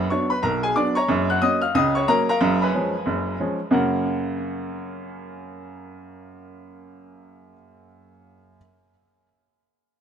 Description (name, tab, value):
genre	jazz, stride piano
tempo	183 BPM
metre	4/4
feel	swing 60% on 8ths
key	F# major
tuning	A4 = 440 Hz
part	bright baby grand piano	solo	0.0-8.6 s	F#1 to F#6	-20 LUFS	equal	tape echo
room	studio ambience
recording	dry, close 1970s-style studio recording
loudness	-19 LUFS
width	side -8 dB against mid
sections	0.0-3.7 A section; 3.7-6.4 B section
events	none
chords	0.0 Bm/F#; 1.1 F#; 2.4 C#7/F#; 3.7 F#